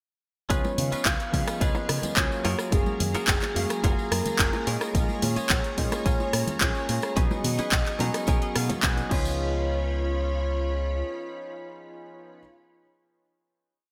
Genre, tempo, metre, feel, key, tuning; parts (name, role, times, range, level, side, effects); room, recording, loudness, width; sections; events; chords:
nu-disco, nu disco; 108 BPM; 4/4; straight; Db mixolydian; A4 = 435 Hz
soft octave-layered synth lead; melody; 0.5-12.4 s; Ab4 to F5; -36 LUFS; equal; chorus, delay
warm concert grand piano; accompaniment; 0.5-12.4 s; F3 to F5; -36 LUFS; equal; analog chorus, sidechain pumping
string machine, full ensemble; sustained chords; 0.5-12.4 s; F4 to Db6; -40 LUFS; equal; ensemble chorus, sidechain pumping
direct-recorded clean electric guitar; riff; 0.5-12.4 s; Db4 to Bb5; -38 LUFS; equal; subtle chorus
fingered electric bass with an envelope filter; bass; 0.5-11.0 s; Gb1 to Db3; -32 LUFS; equal
electronic kick drum; drums; 0.5-9.2 s; -29 LUFS; equal; studio reverb
house drum kit; drums; 0.5-9.2 s; crash cymbal, handclaps, hi-hat, rim click; -30 LUFS; equal; studio reverb, gated reverb
tambourine, bongos and congas; percussion; 0.5-9.4 s; -38 LUFS; equal
light reverb, digital ambience; bright 1980s-style digital production; -26 LUFS; mono
0.5-9.4 drop; 9.4-11.6 final hit
drop 0.5-9.4; clean electric guitar fill 7.7-9.4
0.5 Db7; 2.4 Gbmaj9; 4.7 Bbm7; 7.2 Cb69; 9.1 Db7